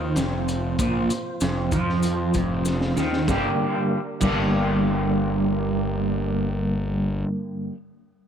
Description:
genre	psychedelic rock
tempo	96 BPM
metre	4/4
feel	straight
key	G minor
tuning	A4 = 438 Hz
part	mellow tonewheel organ	sustained chords	0.0-6.5 s	F3 to C5	-33 LUFS	right 2 dB	slow rotary speaker, overdrive, chorus vibrato
part	electric guitar through a small old amp	riff	0.0-7.7 s	F2 to G4	-23 LUFS	right 1 dB	harmonic tremolo, double-tracked left and right
part	fuzz picked electric bass	bass	0.0-7.2 s	F1 to F2	-27 LUFS	left 1 dB	overdrive
part	crunchy breakbeat drum kit	drums	0.2-4.4 s	crash cymbal, hi-hat, kick drum, snare drum	-29 LUFS	left 1 dB	none
part	maracas	percussion	0.2-4.4 s	none	-38 LUFS	left 5 dB	none
room	light reverb, small room ambience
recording	none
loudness	-21 LUFS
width	side -8 dB against mid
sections	0.0-3.3 A section; 3.3-5.8 B section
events	drum fill 2.7-3.3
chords	0.0 F5; 3.3 Gm

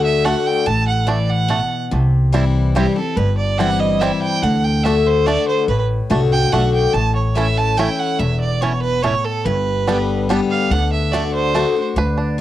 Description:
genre	bluegrass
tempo	143 BPM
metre	3/4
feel	straight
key	D mixolydian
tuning	A4 = 440 Hz
part	clear fiddle	melody	0.0-11.8 s	G4 to A5	-21 LUFS	right 5 dB	cassette tape
part	picked steel-string acoustic guitar	accompaniment	0.0-12.4 s	E2 to G4	-20 LUFS	left 5 dB	cassette tape
part	upright bass	bass	0.0-12.4 s	E1 to D2	-19 LUFS	equal	none
part	bluegrass banjo	melody	0.2-12.4 s	G3 to B4	-23 LUFS	right 5 dB	cassette tape, tape echo
room	little or no reverb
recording	home recording on cassette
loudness	-15 LUFS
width	side -13 dB against mid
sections	0.0-1.9 A section; 1.9-12.0 B section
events	none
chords	0.0 D; 1.9 C; 4.4 D; 6.9 A; 9.5 G; 10.7 D

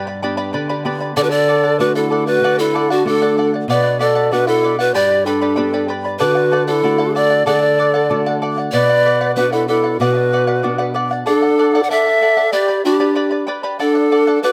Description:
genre	andean folk, Andean ensemble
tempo	95 BPM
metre	2/4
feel	straight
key	unclear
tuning	A4 = 440 Hz
part	charango	accompaniment	0.0-14.5 s	G4 to B5	-24 LUFS	equal	none
part	nylon-string guitar	accompaniment	0.0-11.2 s	G2 to G4	-24 LUFS	equal	none
part	bright polished pan flute	melody	1.2-14.5 s	F#4 to F#5	-18 LUFS	equal	none
part	breathy mellow large quena	second line	1.2-14.5 s	D4 to D5	-22 LUFS	equal	none
room	light reverb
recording	close, detailed microphones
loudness	-16 LUFS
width	mono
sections	0.0-1.2 A section; 1.2-11.3 B section; 11.3-14.5 C section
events	none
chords	0.0 G; 1.2 D; 3.7 Bm; 4.9 G; 6.2 D; 8.7 Bm; 11.3 D; 12.5 G; 13.8 D

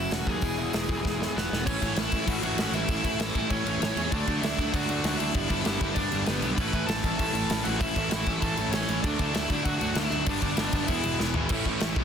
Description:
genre	punk rock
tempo	195 BPM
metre	4/4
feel	straight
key	A mixolydian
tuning	A4 = 440 Hz
part	high-gain lead guitar	melody	0.0-11.2 s	B3 to B5	-31 LUFS	right 1 dB	distortion, digital delay
part	distorted electric guitar	riff	0.0-12.0 s	G2 to F#4	-34 LUFS	left 13 dB	distortion
part	overdriven semi-hollow guitar	riff	0.0-12.0 s	E2 to D4	-33 LUFS	right 11 dB	none
part	fuzz picked electric bass	bass	0.0-12.0 s	E1 to E2	-33 LUFS	equal	overdrive
part	big rock drum kit	drums	0.1-12.0 s	crash cymbal, hi-hat, kick drum, snare drum, toms	-30 LUFS	equal	none
part	high-gain distorted guitar	riff	1.7-12.0 s	G2 to E4	-34 LUFS	left 1 dB	distortion
room	little or no reverb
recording	dense, heavily limited modern master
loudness	-24 LUFS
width	side -8 dB against mid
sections	0.0-1.7 A section; 1.7-11.5 B section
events	drum fill 1.0-1.7, 11.2-11.5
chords	0.4 E; 1.7 A; 4.1 D; 5.3 G; 6.6 A; 9.0 D; 10.3 G; 10.9 E; 11.5 A

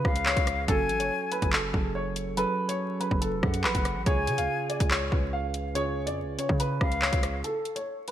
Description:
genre	hip hop, drill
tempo	142 BPM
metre	4/4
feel	half-time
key	unclear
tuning	A4 = 440 Hz
part	dark baby grand piano	melody	0.0-8.1 s	A4 to E#5	-31 LUFS	equal	lush chorus, low-pass filter, digital delay
part	muted felt-like synth keys	accompaniment	0.0-7.5 s	C#3 to B4	-33 LUFS	right 4 dB	chorus, low-pass filter
part	hard-hitting 808-style bass	bass	0.0-7.4 s	E#1 to C#3	-32 LUFS	equal	none
part	drill drum kit	drums	0.0-8.1 s	handclaps, hi-hat, kick drum, rim click	-27 LUFS	equal	gated reverb
part	concert flute	second line	0.1-7.4 s	E#5 to G#5	-32 LUFS	left 5 dB	digital delay
room	light reverb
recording	bright 1980s-style digital production, vinyl crackle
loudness	-25 LUFS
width	side -11 dB against mid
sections	0.0-7.4 A section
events	break 7.4-8.1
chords	0.0 C#; 0.7 F#madd9; 4.1 C#; 7.4 N.C.

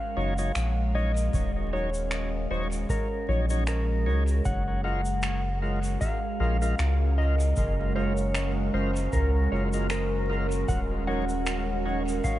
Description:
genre	ambient dub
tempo	77 BPM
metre	4/4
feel	swing 56% on 16ths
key	Eb minor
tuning	A4 = 438 Hz
part	clean lap steel guitar	melody	0.0-12.4 s	Bb4 to Gb5	-33 LUFS	equal	dub echo
part	warbly tape-like pad	sustained chords	0.0-12.4 s	Ab3 to Bb4	-33 LUFS	right 2 dB	chorus, built-in reverb, phaser
part	overdriven tonewheel organ	stabs	0.2-12.0 s	Gb3 to Db5	-36 LUFS	left 2 dB	slow rotary speaker, dub echo
part	soft dub sub bass	bass	0.2-12.2 s	Eb1 to Db2	-27 LUFS	equal	none
part	shaker and finger snaps	drums	0.4-12.4 s	none	-37 LUFS	equal	dub echo
part	electronic kick drum	drums	1.3-12.4 s	none	-31 LUFS	equal	none
part	wind-like tuned noise texture	texture	5.5-12.4 s	Bb4	-40 LUFS	right 4 dB	built-in reverb
room	light reverb, small room reverb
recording	vinyl crackle, nothing above 11.0 kHz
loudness	-24 LUFS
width	side -14 dB against mid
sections	0.0-12.4 A section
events	none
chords	0.0 Ebm7; 4.5 Gbmaj9; 10.7 Ebm7

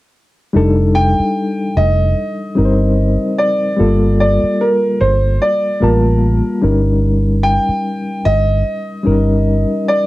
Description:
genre	soul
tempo	74 BPM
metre	4/4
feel	swing 58% on 16ths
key	unclear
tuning	A4 = 445 Hz
part	reed electric piano	accompaniment	0.5-10.1 s	G3 to A5	-17 LUFS	left 2 dB	fast tremolo
part	vintage muted fingered electric bass	bass	0.6-9.6 s	F1 to A1	-14 LUFS	equal	none
part	warm concert grand piano	melody	0.9-10.1 s	Bb4 to G5	-17 LUFS	right 1 dB	none
room	little or no reverb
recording	dry, close 1970s-style studio recording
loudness	-12 LUFS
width	side -18 dB against mid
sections	0.5-10.1 A section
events	none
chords	0.5 F13; 3.8 Gm9; 6.6 Eb7/G

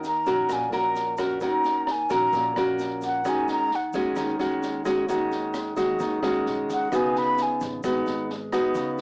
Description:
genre	bossa nova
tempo	131 BPM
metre	4/4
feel	straight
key	Eb minor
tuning	A4 = 443 Hz
part	nylon-string guitar	accompaniment	0.0-9.0 s	Bb2 to Bb4	-27 LUFS	equal	cassette tape
part	upright bass	bass	0.0-9.0 s	Ab1 to Eb2	-43 LUFS	equal	none
part	open jazz drum kit	drums	0.0-9.0 s	kick drum, rim click, snare drum	-40 LUFS	equal	none
part	egg shaker	percussion	0.0-9.0 s	none	-54 LUFS	equal	none
part	breathy concert flute	melody	0.1-4.0, 6.7-7.6 s	Gb5 to Cb6	-27 LUFS	equal	none
room	light reverb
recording	home recording on cassette, small speaker sound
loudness	-25 LUFS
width	mono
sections	0.0-9.0 A section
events	flute solo 0.0-9.0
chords	0.0 Ebm7; 3.2 Ab7sus4/Eb; 6.9 Db9sus4

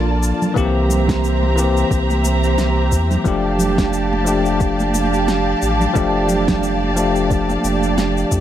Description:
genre	sunset chillout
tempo	89 BPM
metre	4/4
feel	swing 56% on 16ths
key	F major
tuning	A4 = 440 Hz
part	bell-like tine electric piano	accompaniment	0.0-8.4 s	E3 to A4	-19 LUFS	moving between left 5 dB and right 6 dB	auto-pan, ping-pong delay
part	warm symphonic string section	sustained chords	0.0-8.4 s	Bb3 to Bb5	-22 LUFS	left 1 dB	none
part	warm sub bass	bass	0.0-8.4 s	F1 to F2	-20 LUFS	equal	none
part	electronic cabasa and snare drum	drums	0.2-8.4 s	none	-26 LUFS	left 1 dB	overdrive
part	congas	percussion	0.4-7.8 s	none	-27 LUFS	right 3 dB	none
part	electronic kick drum	drums	0.6-8.4 s	none	-20 LUFS	equal	overdrive
room	light reverb, digital ambience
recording	none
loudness	-15 LUFS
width	side -11 dB against mid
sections	0.0-8.4 A section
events	none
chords	0.0 Bbmaj7; 0.6 C7; 3.3 F69

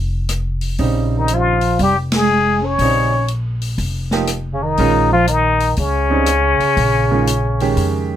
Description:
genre	modal jazz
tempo	120 BPM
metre	4/4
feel	swing 66% on 8ths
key	Bb dorian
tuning	A4 = 441 Hz
part	upright bass	bass	0.0-8.2 s	F1 to F2	-19 LUFS	equal	none
part	open jazz drum kit	drums	0.3-7.9 s	hi-hat, ride cymbal, rim click, snare drum	-26 LUFS	equal	none
part	bright grand piano	accompaniment	0.8-8.2 s	Db3 to G4	-20 LUFS	right 6 dB	none
part	trumpet with plunger mute	melody	1.2-8.2 s	Db4 to Db5	-16 LUFS	left 4 dB	none
part	mellow bass clarinet	second line	1.2-8.2 s	Db3 to Db4	-22 LUFS	right 5 dB	none
room	little or no reverb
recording	close, detailed microphones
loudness	-14 LUFS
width	side -10 dB against mid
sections	0.0-8.2 A section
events	band accent 2.0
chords	0.0 Bbm9

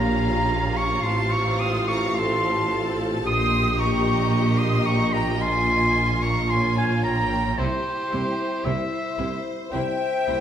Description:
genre	classical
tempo	55 BPM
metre	4/4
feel	rubato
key	unclear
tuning	A4 = 440 Hz
part	dark studio violin section	melody	0.0-10.4 s	C5 to F5	-35 LUFS	left 5 dB	none
part	clear oboe	second line	0.0-10.4 s	C5 to Eb6	-26 LUFS	right 1 dB	none
part	concert flute	second line	0.0-10.4 s	C5 to Eb6	-30 LUFS	left 1 dB	none
part	rich studio violin section	second line	0.0-10.4 s	G4 to C6	-33 LUFS	left 2 dB	none
part	rich symphonic viola section	accompaniment	0.0-10.4 s	Bb3 to A4	-33 LUFS	right 1 dB	none
part	warm French horn section	sustained chords	0.0-10.4 s	E4 to C5	-30 LUFS	left 2 dB	none
part	rich studio cello section	bass	0.0-10.4 s	A2 to C3	-28 LUFS	right 1 dB	none
part	warm studio double bass section	bass	0.0-10.4 s	A1 to C2	-29 LUFS	right 1 dB	none
part	warm tuba	bass	0.0-10.4 s	A1 to C2	-29 LUFS	right 2 dB	none
room	wet recital hall reverb, RT60 1.4 s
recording	minimal, uncompressed stereo recording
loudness	-20 LUFS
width	side -9 dB against mid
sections	0.0-10.4 A section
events	none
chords	0.0 Bbm; 1.0 F/A; 3.2 Bbm; 7.6 C7

